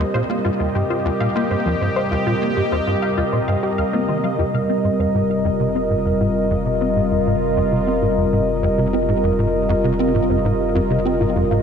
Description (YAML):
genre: ambient, sequencer-driven space music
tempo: 99 BPM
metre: 4/4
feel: straight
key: unclear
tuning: A4 = 440 Hz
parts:
  - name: sweeping resonant pad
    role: sustained chords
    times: 0.0-11.6 s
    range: C3 to Eb5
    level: -19 LUFS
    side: equal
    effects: chorus
  - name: wide unison pluck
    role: arpeggios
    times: 0.0-11.6 s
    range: F3 to F5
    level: -28 LUFS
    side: moving between left 6 dB and equal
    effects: auto-pan, ping-pong delay
  - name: tight sequencer bass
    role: riff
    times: 0.0-11.6 s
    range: Eb2 to C4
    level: -22 LUFS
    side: equal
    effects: ensemble chorus, ping-pong delay
  - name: warm sub bass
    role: bass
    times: 4.4-11.6 s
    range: F1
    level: -28 LUFS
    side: equal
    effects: none
room: wet lush hall reverb, RT60 2.7 s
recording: dreamy mix soaked in reverb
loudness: -17 LUFS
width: side -7 dB against mid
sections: 0.0-4.4 A section; 4.4-11.6 B section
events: none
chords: 0.0 Eb; 4.4 Fm7